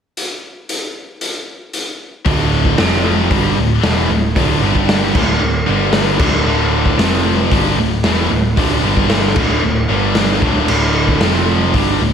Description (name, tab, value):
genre	hard rock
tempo	114 BPM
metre	4/4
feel	straight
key	D minor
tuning	A4 = 442 Hz
part	raw garage drum kit	drums	0.2-11.9 s	crash cymbal, hi-hat, kick drum, snare drum	-17 LUFS	equal	none
part	distorted electric guitar	riff	2.3-12.1 s	D2 to G3	-20 LUFS	equal	overdrive, slapback echo
part	heavy high-gain guitar	riff	2.3-12.1 s	D2 to G3	-20 LUFS	left 10 dB	distortion
part	overdriven semi-hollow guitar	riff	2.3-12.1 s	D2 to G3	-19 LUFS	right 8 dB	slapback echo
part	hollow-body short-scale picked electric bass	bass	2.3-12.1 s	D1 to G1	-20 LUFS	equal	none
room	moderate lush hall reverb, RT60 1.9 s, small room ambience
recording	big arena sound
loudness	-12 LUFS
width	side -7 dB against mid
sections	0.2-2.3 A section; 2.3-12.1 B section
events	none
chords	0.2 N.C.; 2.3 D5; 2.8 F5; 3.3 D5; 4.6 G5; 5.2 D5; 5.7 G5; 6.2 D5; 7.0 F5; 7.5 D5; 8.8 G5; 9.4 D5; 9.9 G5; 10.4 D5; 11.2 F5